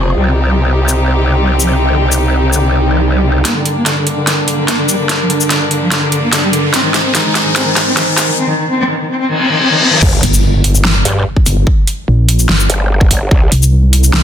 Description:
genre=heavy wobble dubstep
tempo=146 BPM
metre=4/4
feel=half-time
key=G phrygian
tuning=A4 = 440 Hz
part: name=dark cello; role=melody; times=0.0-10.0 s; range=C3 to C4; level=-16 LUFS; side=left 1 dB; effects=low-pass filter, digital delay
part: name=rich chamber string section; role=sustained chords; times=0.0-8.4 s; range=G2 to C5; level=-20 LUFS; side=left 1 dB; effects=sidechain pumping
part: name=growl bass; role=bass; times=0.0-3.4, 10.0-13.5 s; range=F1 to G2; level=-13 LUFS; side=equal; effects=chorus, overdrive
part: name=warbly tape-like pad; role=texture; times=0.0-8.4 s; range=D4 to Ab5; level=-21 LUFS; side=right 2 dB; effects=chorus, built-in reverb, sidechain pumping
part: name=big-room dance drum kit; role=drums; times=0.9-14.2 s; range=crash cymbal, hi-hat, shaker, snare drum, toms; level=-14 LUFS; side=equal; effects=overdrive, high-pass filter on perc, studio reverb, high-pass filter on snare, high-pass filter on hats, high-pass filter on toms, high-pass filter on cymbals
part: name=swell, riser, reverse cymbal and impact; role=sound effects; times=2.8-11.7 s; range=none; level=-17 LUFS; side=left 1 dB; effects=none
part: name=electronic kick drum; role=drums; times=10.0-13.4 s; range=none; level=-11 LUFS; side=equal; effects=overdrive, studio reverb
part: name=pulsing pluck wobble bass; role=bass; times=10.2-14.2 s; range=G1 to C2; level=-10 LUFS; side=equal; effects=chorus, overdrive
room=light reverb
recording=dense, heavily limited modern master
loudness=-10 LUFS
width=side -9 dB against mid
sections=0.0-3.5 A section; 3.5-10.0 B section; 10.0-14.2 C section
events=swell 2.8-3.5; build-up 3.5-10.0; drum fill 3.5-8.4, 9.6-10.0; filter sweep on cello 3.5-10.0; riser 5.3-8.4; reverse cymbal 9.3-10.0; drop 10.0-14.2; impact 10.0-11.7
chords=0.2 Cm; 3.5 Gm; 6.7 Ab; 10.0 Gm; 13.3 N.C.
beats=| 0.16 0.57 0.98 1.40 | 1.81 2.22 2.63 3.04 | 3.45 3.86 4.27 4.68 | 5.09 5.50 5.92 6.33 | 6.74 7.15 7.56 7.97 | 8.38 8.79 9.20 9.61 | 10.03 10.44 10.85 11.26 | 11.67 12.08 12.49 12.90 | 13.31 13.72 14.13

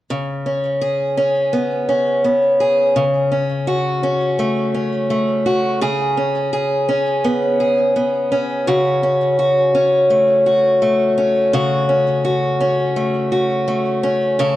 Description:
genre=folktronica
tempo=84 BPM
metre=4/4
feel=straight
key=unclear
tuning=A4 = 439 Hz
part: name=picked acoustic archtop guitar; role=solo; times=0.1-14.6 s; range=C#3 to A4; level=-15 LUFS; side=equal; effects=digital delay
room=light reverb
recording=none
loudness=-15 LUFS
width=side -14 dB against mid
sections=0.1-5.8 A section; 5.8-14.6 B section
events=none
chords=0.1 C#5; 3.0 A6/C#; 5.8 C#5; 8.7 F#m/C#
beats=| 0.10 0.82 1.53 2.25 | 2.96 3.68 4.39 5.11 | 5.82 6.53 7.25 7.96 | 8.68 9.39 10.11 10.82 | 11.53 12.25 12.96 13.68 | 14.39

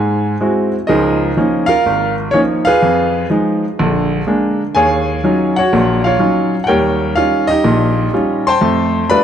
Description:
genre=solo jazz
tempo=124 BPM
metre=4/4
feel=swing 67% on 8ths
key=Db major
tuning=A4 = 440 Hz
part: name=clear baby grand piano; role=solo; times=0.0-9.2 s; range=Ab1 to C6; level=-12 LUFS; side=equal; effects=none
room=moderate echo chamber reverb, RT60 2.6 s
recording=dark, warm production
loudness=-12 LUFS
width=side -9 dB against mid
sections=0.9-9.2 A section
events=none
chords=0.0 Abaug7; 0.9 Db69; 2.8 Fm7b5; 3.8 Bb7; 4.7 Ebm9; 6.7 Eb9; 8.6 F69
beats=0.40 | 0.88 1.36 1.84 2.33 | 2.81 3.29 3.78 4.26 | 4.74 5.23 5.71 6.19 | 6.68 7.16 7.64 8.13 | 8.61 9.09

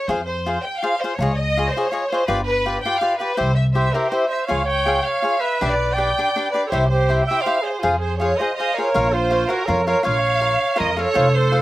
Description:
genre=mexican folk, mariachi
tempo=163 BPM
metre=3/4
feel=straight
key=F minor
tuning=A4 = 438 Hz
part: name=clear studio violin section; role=melody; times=0.0-11.6 s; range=Ab4 to G5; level=-22 LUFS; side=right 1 dB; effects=none
part: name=cavaquinho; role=accompaniment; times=0.1-11.6 s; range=D4 to F5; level=-23 LUFS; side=left 2 dB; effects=none
part: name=upright bass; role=bass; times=0.1-11.6 s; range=F1 to F2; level=-22 LUFS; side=equal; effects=none
part: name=warm trumpet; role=second line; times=3.7-11.6 s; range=F4 to E5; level=-22 LUFS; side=right 3 dB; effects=none
room=little or no reverb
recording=recorded outdoors, with no room sound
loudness=-17 LUFS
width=side -16 dB against mid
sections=0.1-8.9 A section; 8.9-11.6 B section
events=none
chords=0.1 Fm; 1.2 Dbadd9; 2.3 G7; 3.4 C; 4.5 Db; 5.6 G/B; 6.7 C; 7.8 Fm; 8.9 Bbm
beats=| 0.08 0.45 0.82 | 1.18 1.55 1.92 | 2.29 2.65 3.02 | 3.39 3.76 4.13 | 4.50 4.88 5.25 | 5.62 5.99 6.35 | 6.72 7.09 7.46 | 7.82 8.20 8.57 | 8.94 9.31 9.69 | 10.05 10.42 10.79 | 11.16 11.53

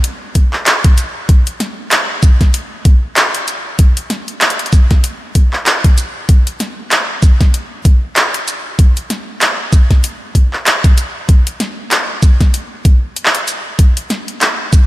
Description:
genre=glitch hop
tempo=96 BPM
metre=4/4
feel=swing 58% on 16ths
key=none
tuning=none
part: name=dubstep drum kit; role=drums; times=0.0-14.9 s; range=handclaps, hi-hat, shaker, snare drum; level=-15 LUFS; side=equal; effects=overdrive, studio reverb
part: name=electronic kick drum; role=drums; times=0.4-14.9 s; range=none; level=-8 LUFS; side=equal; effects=overdrive, studio reverb
room=light reverb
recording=none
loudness=-10 LUFS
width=side -17 dB against mid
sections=0.0-14.9 A section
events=none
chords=none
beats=0.04 0.66 | 1.29 1.91 2.54 3.16 | 3.79 4.41 5.04 5.66 | 6.29 6.91 7.54 8.16 | 8.79 9.41 10.04 10.66 | 11.29 11.91 12.54 13.16 | 13.79 14.41

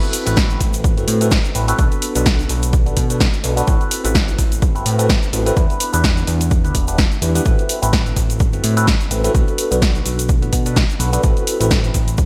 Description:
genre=filtered disco house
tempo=127 BPM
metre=4/4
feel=swing 56% on 16ths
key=A dorian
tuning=A4 = 440 Hz
part: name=tine electric piano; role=accompaniment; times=0.0-12.3 s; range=B3 to B4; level=-24 LUFS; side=equal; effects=phaser, vintage 12-bit sampler grit, sidechain pumping
part: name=punchy analog drum machine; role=drums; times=0.0-12.3 s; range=cabasa, hi-hat, snare drum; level=-24 LUFS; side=equal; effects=overdrive, sidechain pumping on hats, sidechain pumping on perc, sidechain pumping on cymbals
part: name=tube shaker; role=percussion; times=0.0-12.3 s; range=none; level=-33 LUFS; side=equal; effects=sidechain pumping on perc
part: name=fat analog bass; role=bass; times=0.3-12.3 s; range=E1 to B2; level=-22 LUFS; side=equal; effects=sidechain pumping
part: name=electronic kick drum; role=drums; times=0.4-12.3 s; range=none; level=-19 LUFS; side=equal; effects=overdrive
room=light reverb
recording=bright 1980s-style digital production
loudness=-17 LUFS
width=mono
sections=0.0-12.3 A section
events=none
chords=0.0 Am69; 1.8 Bm7; 3.7 Am69; 5.6 Em7; 7.5 Am69; 9.3 Bm7; 11.2 Am69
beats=0.37 0.84 1.31 | 1.79 2.26 2.73 3.20 | 3.68 4.15 4.62 5.09 | 5.57 6.04 6.51 6.98 | 7.46 7.93 8.40 8.87 | 9.35 9.82 10.29 10.76 | 11.24 11.71 12.18

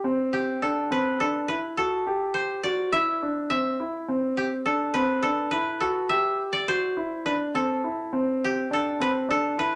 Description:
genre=progressive instrumental, progressive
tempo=208 BPM (eighths)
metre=7/8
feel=straight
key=A dorian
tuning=A4 = 440 Hz
part: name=dark concert grand piano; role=arpeggios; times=0.0-9.8 s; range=C4 to G4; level=-29 LUFS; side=equal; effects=none
part: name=koto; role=melody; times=0.3-9.8 s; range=G4 to E5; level=-28 LUFS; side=equal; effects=none
room=wet studio reverb, RT60 0.6 s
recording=lossy compression artefacts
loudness=-26 LUFS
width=mono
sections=0.0-9.8 A section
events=none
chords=0.0 Am7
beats=| 0.04 0.33 0.62 0.91 1.20 1.49 1.78 | 2.06 2.35 2.64 2.93 3.22 3.51 3.80 | 4.09 4.38 4.66 4.95 5.24 5.53 5.82 | 6.11 6.40 6.69 6.97 7.26 7.55 7.84 | 8.13 8.42 8.71 9.00 9.29 9.57

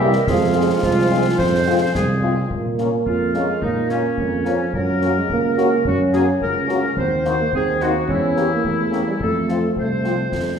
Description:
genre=military-style march for wind band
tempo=107 BPM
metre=2/4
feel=straight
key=Bb minor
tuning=A4 = 440 Hz
part: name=warm cornet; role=melody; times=0.0-10.1 s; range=F4 to C5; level=-34 LUFS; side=equal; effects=none
part: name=clear woodwind section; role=second line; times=0.0-10.6 s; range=Db4 to F5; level=-23 LUFS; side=left 2 dB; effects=none
part: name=mellow euphonium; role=second line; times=0.0-10.6 s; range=F3 to C#4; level=-22 LUFS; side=right 3 dB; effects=none
part: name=warm French horn section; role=accompaniment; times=0.0-10.1 s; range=F3 to G4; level=-24 LUFS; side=left 5 dB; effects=none
part: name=mellow trombone section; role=sustained chords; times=0.0-2.2 s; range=E3 to Bb3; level=-25 LUFS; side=right 4 dB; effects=none
part: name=mellow tuba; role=bass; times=0.0-10.6 s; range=C2 to Bb2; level=-23 LUFS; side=right 2 dB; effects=none
part: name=concert snare drum and concert bass drum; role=drums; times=0.1-10.6 s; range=none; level=-29 LUFS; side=left 1 dB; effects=none
room=wet recital hall reverb, RT60 1.6 s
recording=recorded in a church or concert hall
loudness=-17 LUFS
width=side -7 dB against mid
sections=0.0-2.5 A section; 2.5-10.6 B section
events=none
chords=0.3 Fm; 2.5 Bbm; 4.7 Gb; 7.0 Cm7b5/Eb; 8.1 Edim7; 9.2 F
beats=| 0.27 0.83 | 1.39 1.95 | 2.51 3.06 | 3.62 4.18 | 4.74 5.30 | 5.86 6.42 | 6.98 7.54 | 8.09 8.65 | 9.21 9.77 | 10.33

